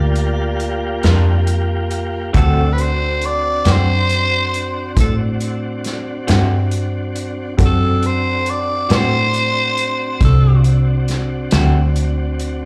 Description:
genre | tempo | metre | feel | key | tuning
slow blues | 46 BPM (dotted quarters) | 12/8 | straight | unclear | A4 = 440 Hz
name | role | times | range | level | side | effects
growling tenor saxophone | melody | 0.0-10.6 s | A4 to D5 | -22 LUFS | equal | slapback echo
clear upright piano | accompaniment | 0.0-12.7 s | C4 to A4 | -31 LUFS | equal | slapback echo
tonewheel organ | sustained chords | 0.0-12.7 s | Bb3 to G4 | -28 LUFS | equal | slow rotary speaker, chorus vibrato
vintage muted fingered electric bass | bass | 0.0-12.7 s | C2 to A2 | -19 LUFS | equal | none
vintage drum kit | drums | 0.2-12.6 s | hi-hat, kick drum, snare drum | -22 LUFS | equal | none
electric guitar through a small old amp | accompaniment | 1.0-11.8 s | D3 to Bb4 | -26 LUFS | equal | tremolo, slapback echo
room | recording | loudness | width
small room ambience | live gig heard through the venue's PA, club reverb | -17 LUFS | mono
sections
0.0-12.7 A section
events
none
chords
0.0 Gm7; 2.3 D7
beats
1.03 | 2.35 3.66 4.97 6.28 | 7.59 8.90 10.21 11.53

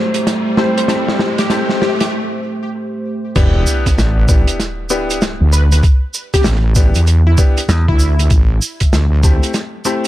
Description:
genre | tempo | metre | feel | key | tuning
glitch hop | 97 BPM | 4/4 | swing 63% on 16ths | unclear | A4 = 440 Hz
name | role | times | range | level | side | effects
dark analog pad | sustained chords | 0.0-3.3 s | A3 to C5 | -20 LUFS | right 1 dB | chorus, vintage 12-bit sampler grit, sidechain pumping
riser and sub drop | sound effects | 0.0-5.8 s | none | -22 LUFS | equal | none
warm soul drum kit | drums | 0.1-10.1 s | crash cymbal, hi-hat, snare drum | -20 LUFS | right 1 dB | none
plucky unison lead | melody | 0.6-8.3 s | E4 to C5 | -23 LUFS | left 1 dB | analog chorus, digital delay
bright grand piano | stabs | 0.6-10.1 s | A3 to G4 | -21 LUFS | left 2 dB | sidechain pumping, digital delay
wobble bass | bass | 3.4-9.4 s | E1 to E2 | -12 LUFS | equal | chorus, overdrive
electronic kick drum | drums | 3.4-9.4 s | none | -12 LUFS | equal | none
cabasa | percussion | 3.4-10.1 s | none | -24 LUFS | right 4 dB | none
vintage slap bass | bass | 7.7-7.9 s | E2 | -12 LUFS | equal | none
room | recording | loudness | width
moderate plate reverb, RT60 1.5 s, small room ambience | dark, warm production | -12 LUFS | side -15 dB against mid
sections
0.0-3.4 A section; 3.4-10.1 B section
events
build-up 0.0-3.4; drum fill 0.0-2.1; riser 0.0-2.1; break 2.1-3.4; drop 3.4-10.1; impact 3.4-5.8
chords
0.0 Am7; 3.4 Em7; 8.3 Am7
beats
0.27 | 0.89 1.50 2.12 2.74 | 3.36 3.98 4.60 5.21 | 5.83 6.45 7.07 7.69 | 8.31 8.93 9.54

